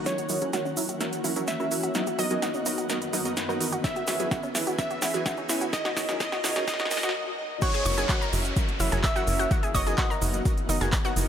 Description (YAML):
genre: progressive house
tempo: 127 BPM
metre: 4/4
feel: straight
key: F# mixolydian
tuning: A4 = 440 Hz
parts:
  - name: shimmering ambient pad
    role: sustained chords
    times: 0.0-11.3 s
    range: F#2 to A#4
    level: -35 LUFS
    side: left 1 dB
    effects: chorus, built-in reverb, sidechain pumping
  - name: tight sequencer bass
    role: bass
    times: 0.0, 7.9-11.3 s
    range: F#1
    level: -28 LUFS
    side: equal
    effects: sidechain pumping
  - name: swell, riser and downlifter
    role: sound effects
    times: 0.0-11.3 s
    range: none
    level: -38 LUFS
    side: left 1 dB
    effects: none
  - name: plucky unison lead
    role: melody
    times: 0.1-10.4 s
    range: C#5 to E5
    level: -32 LUFS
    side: right 1 dB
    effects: sidechain pumping, digital delay
  - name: supersaw stab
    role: stabs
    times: 0.1-11.3 s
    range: D#3 to G#5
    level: -33 LUFS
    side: right 2 dB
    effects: cassette tape, sidechain pumping, low-pass filter, tape echo
  - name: big-room dance drum kit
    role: drums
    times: 0.1-11.3 s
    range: crash cymbal, handclaps, hi-hat, snare drum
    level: -32 LUFS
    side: right 1 dB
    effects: overdrive, sidechain pumping on hats, high-pass filter on hats, low-pass filter on hats, high-pass filter on snare, low-pass filter on snare, sidechain pumping on cymbals, high-pass filter on cymbals, low-pass filter on cymbals, high-pass filter on room, low-pass filter on room
  - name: egg shaker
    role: percussion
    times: 0.1-11.3 s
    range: none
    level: -36 LUFS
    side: right 3 dB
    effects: none
  - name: analog pluck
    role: arpeggios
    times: 0.2-11.1 s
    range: F#3 to C#6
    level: -33 LUFS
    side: equal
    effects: chorus, sidechain pumping, tape echo
  - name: electronic kick drum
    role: drums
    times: 3.8-11.0 s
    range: none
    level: -27 LUFS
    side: equal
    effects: overdrive
  - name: soft synth bell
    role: second line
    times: 7.6-10.4 s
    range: C#6 to E6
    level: -37 LUFS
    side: equal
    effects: chorus, sidechain pumping, tape echo
room: light reverb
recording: high-pass filter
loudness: -24 LUFS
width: side -9 dB against mid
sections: 0.1-7.6 A section; 7.6-11.3 B section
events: build-up 0.1-7.6; drum fill 0.1-7.1; filter sweep on synth arpeggio sound 0.1-7.6; filter sweep on supersaw synth 0.1-7.6; stop 7.1-7.6; drop 7.6-11.3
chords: 0.1 F#7; 2.0 Bmaj7/F#; 3.8 E6; 5.7 D#m; 7.6 F#7; 9.5 Bmaj7/F#